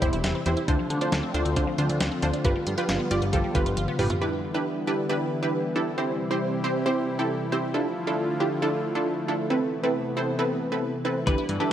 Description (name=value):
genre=synth-pop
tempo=136 BPM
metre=4/4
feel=straight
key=unclear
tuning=A4 = 440 Hz
part: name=wide unison pluck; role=accompaniment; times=0.0-11.7 s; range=C4 to D5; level=-26 LUFS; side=right 2 dB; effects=lush chorus
part: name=warm analog pad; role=sustained chords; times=0.0-11.7 s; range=C3 to G4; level=-30 LUFS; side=left 2 dB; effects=chorus
part: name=resonant blip pluck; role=arpeggios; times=0.0-4.2, 11.3-11.7 s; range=D3 to F4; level=-33 LUFS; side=right 1 dB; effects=phaser, tape echo
part: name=fat analog bass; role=bass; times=0.0-4.1, 11.3-11.6 s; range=E1 to D3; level=-29 LUFS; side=equal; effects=none
part: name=clean 12-bit digital drum machine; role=drums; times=0.0-4.2, 11.3-11.6 s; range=hi-hat, kick drum, snare drum, toms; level=-28 LUFS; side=equal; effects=none
part: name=twelve-string electric guitar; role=second line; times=11.3-11.7 s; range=A4 to B4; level=-29 LUFS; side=left 5 dB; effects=lush chorus, tape echo
room=light reverb, digital ambience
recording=none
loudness=-23 LUFS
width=side -10 dB against mid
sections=0.0-4.2 A section; 4.2-11.7 B section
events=drum fill 3.8-4.2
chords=0.0 C/E; 0.7 Dm7; 2.4 G7; 4.2 G6; 6.0 C; 7.7 Dmadd9; 9.5 Amadd9